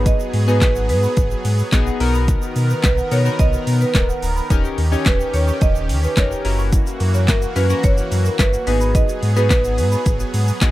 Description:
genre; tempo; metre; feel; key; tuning
dance-pop; 108 BPM; 4/4; straight; G# minor; A4 = 441 Hz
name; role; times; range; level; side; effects
chorused retro synth keys; accompaniment; 0.0-10.7 s; B3 to C#5; -26 LUFS; left 7 dB; sidechain pumping, plate reverb
supersaw pad; sustained chords; 0.0-10.7 s; D#3 to A#4; -28 LUFS; right 1 dB; sidechain pumping, plate reverb
sub bass with octave; bass; 0.0-10.7 s; C#1 to B2; -19 LUFS; equal; sidechain pumping
marimba with medium hard mallets; melody; 0.1-10.7 s; A#4 to D#5; -23 LUFS; right 2 dB; tape echo, plate reverb
worn celesta; arpeggios; 0.1-10.7 s; D#4 to C#6; -32 LUFS; right 4 dB; sidechain pumping, tape echo, plate reverb
deep house drum kit; drums; 0.1-10.7 s; handclaps, hi-hat, kick drum, shaker, snare drum; -19 LUFS; equal; overdrive
tube shaker; percussion; 0.1-10.7 s; none; -39 LUFS; right 8 dB; none
room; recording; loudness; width
little or no reverb; none; -15 LUFS; side -16 dB against mid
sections
0.0-10.7 A section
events
none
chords
0.0 G#m7; 2.0 Bmaj7; 4.5 D#7; 6.4 F#7; 8.7 G#m7

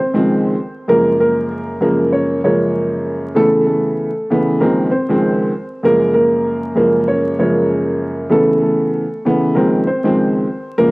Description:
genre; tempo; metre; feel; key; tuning
hip hop; 97 BPM; 4/4; swing 61% on 16ths; Gb lydian; A4 = 440 Hz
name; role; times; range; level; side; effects
dark upright piano; melody; 0.0-10.9 s; A3 to Db5; -18 LUFS; equal; high-pass filter, low-pass filter, cassette tape
dark upright piano; accompaniment; 0.1-10.9 s; Db2 to C4; -14 LUFS; equal; high-pass filter, low-pass filter, cassette tape
room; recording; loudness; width
light reverb, studio ambience; home recording on cassette, vinyl crackle; -13 LUFS; side -24 dB against mid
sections
0.0-10.8 A section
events
none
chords
0.0 Dbmaj9; 0.9 Gbmaj9; 3.4 Aadd9; 4.6 Dbmaj9; 5.8 Gbmaj9; 8.3 Aadd9; 9.6 Dbmaj9

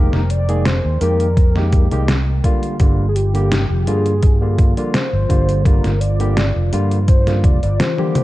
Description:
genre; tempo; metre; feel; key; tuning
vaporwave; 84 BPM; 4/4; straight; unclear; A4 = 440 Hz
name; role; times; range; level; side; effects
warm velvety synth lead; melody; 0.0-8.2 s; G4 to D5; -24 LUFS; left 1 dB; chorus, tape echo
barky tine electric piano; accompaniment; 0.0-8.2 s; D3 to Ab4; -23 LUFS; equal; wide subtle chorus
warbly tape-like pad; sustained chords; 0.0-8.2 s; D3 to G5; -30 LUFS; equal; none
fingered electric bass; bass; 0.0-7.8 s; F1 to G2; -17 LUFS; equal; none
detuned 8-bit digital drum machine; drums; 0.1-8.2 s; hi-hat, snare drum, toms; -21 LUFS; equal; overdrive, vintage 12-bit sampler grit
electronic kick drum; drums; 1.4-7.6 s; none; -14 LUFS; equal; overdrive, vintage 12-bit sampler grit
room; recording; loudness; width
little or no reverb; dark, warm production, cassette tape; -14 LUFS; side -17 dB against mid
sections
0.0-8.2 A section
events
drum fill 7.8-8.2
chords
0.0 Fm11; 2.4 Gm7

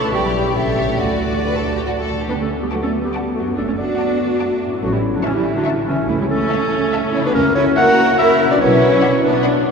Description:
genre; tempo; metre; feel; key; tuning
cinematic, playful, whimsical film cue; 142 BPM; 3/4; straight; D major; A4 = 440 Hz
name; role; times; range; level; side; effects
clear studio violin section; melody; 0.0-9.7 s; C#5 to D6; -31 LUFS; left 2 dB; none
bright silver concert flute; second line; 0.0-1.8 s; D5 to B5; -27 LUFS; right 1 dB; none
rich studio violin section; second line; 0.0-9.7 s; E4 to A5; -26 LUFS; left 2 dB; none
rich studio viola section; accompaniment; 0.0-9.7 s; E3 to A#4; -21 LUFS; right 2 dB; none
concert harp; arpeggios; 0.0-9.7 s; F#2 to D5; -24 LUFS; left 4 dB; none
rich studio cello section; bass; 0.0-9.7 s; C#3 to A4; -23 LUFS; right 3 dB; none
warm studio double bass section; bass; 0.0-8.9 s; F#1 to D2; -26 LUFS; right 3 dB; none
warm clarinet; second line; 2.3-9.7 s; C#4 to F#5; -20 LUFS; left 1 dB; none
dark French horn section; sustained chords; 2.7-9.7 s; A3 to F#4; -23 LUFS; left 2 dB; none
room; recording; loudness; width
wet cathedral reverb, RT60 4.4 s; minimal, uncompressed stereo recording; -15 LUFS; side -5 dB against mid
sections
0.0-2.3 A section; 2.3-9.7 A section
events
none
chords
0.1 G/B; 0.6 A7; 1.0 D; 3.6 D/F#; 4.8 A; 6.1 A/C#; 7.4 F#7/C#; 8.6 Bm

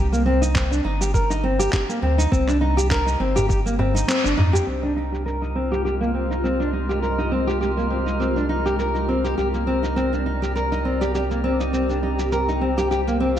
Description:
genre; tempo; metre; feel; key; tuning
organic downtempo; 102 BPM; 4/4; swing 55% on 16ths; C minor; A4 = 440 Hz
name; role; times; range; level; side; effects
nylon-string guitar; arpeggios; 0.0-13.4 s; Bb3 to Bb4; -22 LUFS; equal; low-pass filter, digital delay
warm sub bass; bass; 0.0-13.4 s; G1 to F2; -24 LUFS; equal; none
electronic shaker and handclaps; drums; 0.1-13.4 s; none; -30 LUFS; right 1 dB; overdrive, low-pass filter on perc, low-pass filter on snare
electronic kick drum; drums; 0.6-3.6 s; none; -22 LUFS; equal; overdrive
darbuka; percussion; 0.8-4.7 s; none; -28 LUFS; left 1 dB; none
granular cloud pad; sustained chords; 5.5-13.4 s; Ab3 to D5; -28 LUFS; equal; built-in reverb, vintage 12-bit sampler grit, sidechain pumping
drifting glass-harmonics texture; texture; 5.2-13.4 s; Bb4; -33 LUFS; right 2 dB; chorus, built-in reverb
room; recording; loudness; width
moderate echo chamber reverb, RT60 2.0 s, digital ambience; dark, warm production; -19 LUFS; side -10 dB against mid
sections
0.0-4.7 A section; 4.7-13.4 B section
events
kick drops out 4.1-4.7; band accent 4.1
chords
0.0 Cm7; 4.7 Fmadd9/C; 9.4 Cm7

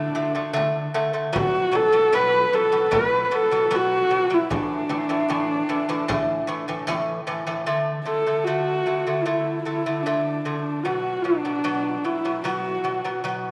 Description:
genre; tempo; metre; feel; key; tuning
mongolian traditional, Mongolian folk; 76 BPM; 4/4; straight; D gong mode; A4 = 441 Hz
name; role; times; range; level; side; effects
dark horsehead fiddle; melody; 0.0-13.2 s; D4 to B4; -24 LUFS; equal; tape echo
lute; arpeggios; 0.0-13.5 s; A2 to A3; -28 LUFS; equal; none
frame drum; percussion; 0.4-7.1 s; none; -34 LUFS; equal; none
room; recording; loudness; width
wet echo chamber reverb, RT60 1.6 s, small room ambience; none; -23 LUFS; mono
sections
0.0-7.7 A section; 7.7-13.5 B section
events
none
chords
0.0 D5; 1.3 B5; 4.5 A5; 7.7 D5; 10.9 B5

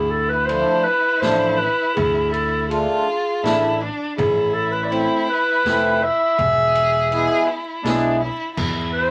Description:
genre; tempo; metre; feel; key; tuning
klezmer; 82 BPM; 3/4; straight; E phrygian dominant; A4 = 441 Hz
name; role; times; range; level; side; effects
mellow clarinet; melody; 0.0-9.1 s; G#4 to E5; -21 LUFS; equal; none
rich violin; second line; 0.0-9.1 s; D4 to G#4; -28 LUFS; equal; none
modern bright picked electric bass; bass; 0.0-9.1 s; E1 to E2; -29 LUFS; equal; none
mellow accordion; accompaniment; 0.5-8.2 s; F3 to F4; -23 LUFS; equal; none
street-band drum kit; drums; 0.5-8.7 s; crash cymbal, kick drum, ride cymbal, snare drum; -33 LUFS; equal; none
room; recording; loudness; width
wet studio ambience, RT60 0.5 s; vinyl crackle; -19 LUFS; mono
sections
0.0-8.6 A section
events
none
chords
0.0 Dm; 4.2 Am; 6.4 E; 8.6 N.C.

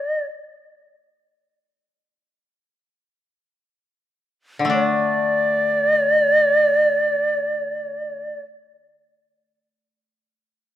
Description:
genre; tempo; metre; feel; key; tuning
japanese traditional, Japanese chamber music; free time; none; none; unclear; A4 = 440 Hz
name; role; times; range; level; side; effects
bright reedy shakuhachi; melody; 0.0-8.4 s; D5; -18 LUFS; equal; none
koto; accompaniment; 4.6-8.4 s; D3 to D4; -24 LUFS; left 2 dB; none
room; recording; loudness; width
moderate recital hall reverb, RT60 1.7 s; none; -17 LUFS; side -12 dB against mid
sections
0.0-4.7 A section; 4.7-9.1 B section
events
slowing down 0.0-4.7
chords
none

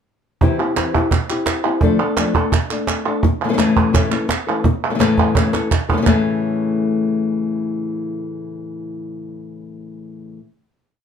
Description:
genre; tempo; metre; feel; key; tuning
flamenco; 170 BPM; 4/4; straight; A major; A4 = 440 Hz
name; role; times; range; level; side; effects
nylon-string guitar; accompaniment; 0.4-10.4 s; A2 to A4; -19 LUFS; left 4 dB; none
cajon; percussion; 0.4-6.1 s; none; -18 LUFS; right 3 dB; none
palmas hand claps; percussion; 0.6-6.1 s; none; -22 LUFS; right 6 dB; none
room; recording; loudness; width
wet studio reverb, RT60 0.5 s; heard from further back in the room; -16 LUFS; side -7 dB against mid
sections
0.4-6.1 groove; 6.1-8.9 final chord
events
drum fill 5.5-6.1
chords
0.4 C; 1.8 Dm; 3.2 A

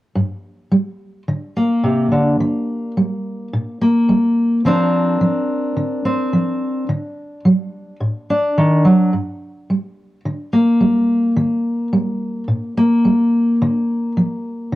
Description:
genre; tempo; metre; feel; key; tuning
folk; 107 BPM; 4/4; straight; G minor; A4 = 440 Hz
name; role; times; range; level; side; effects
fingerpicked steel-string acoustic guitar; accompaniment; 0.2-14.8 s; G2 to Bb4; -15 LUFS; equal; none
room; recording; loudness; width
little or no reverb; worn, warbling old tape, cassette tape, warbly pitch drift; -15 LUFS; side -16 dB against mid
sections
0.2-14.8 A section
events
none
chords
0.2 Gm; 2.4 Eb; 4.6 Bbadd9/D; 6.9 D; 9.1 Gm; 11.4 Eb; 13.6 Bb/D

